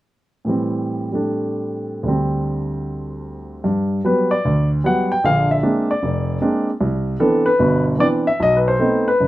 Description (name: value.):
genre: solo jazz.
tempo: 152 BPM.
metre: 4/4.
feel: swing 64% on 8ths, rubato.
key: G major.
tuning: A4 = 442 Hz.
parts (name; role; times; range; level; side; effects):
warm grand piano; solo; 0.4-9.3 s; F1 to G5; -16 LUFS; equal; none.
room: wet studio reverb, RT60 0.5 s.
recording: rough home demo mix.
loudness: -16 LUFS.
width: side -16 dB against mid.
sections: 0.5-3.6 A section; 3.6-9.3 B section.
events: none.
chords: 0.5 Am7; 2.1 D7sus4; 3.6 Gmaj7; 5.2 Bb9; 6.8 Cmaj9; 8.4 B7b9.